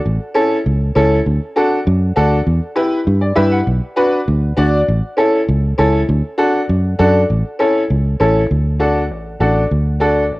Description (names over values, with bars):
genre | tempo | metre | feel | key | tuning
latin, cumbia | 199 BPM | 4/4 | straight | D major | A4 = 440 Hz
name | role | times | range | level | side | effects
fingered electric bass | bass | 0.1-10.4 s | A1 to G2 | -15 LUFS | equal | none
bright upright piano | accompaniment | 0.3-10.2 s | C#4 to F#5 | -16 LUFS | equal | cassette tape
room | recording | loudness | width
moderate spring reverb, RT60 1.8 s, small room reverb | home recording on cassette | -13 LUFS | side -20 dB against mid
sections
0.0-8.5 A section; 8.5-10.4 B section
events
upright piano fill 3.1-3.7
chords
0.1 A; 1.3 D; 2.5 Em; 3.7 Bm; 4.9 A; 6.1 D; 7.3 A; 8.5 D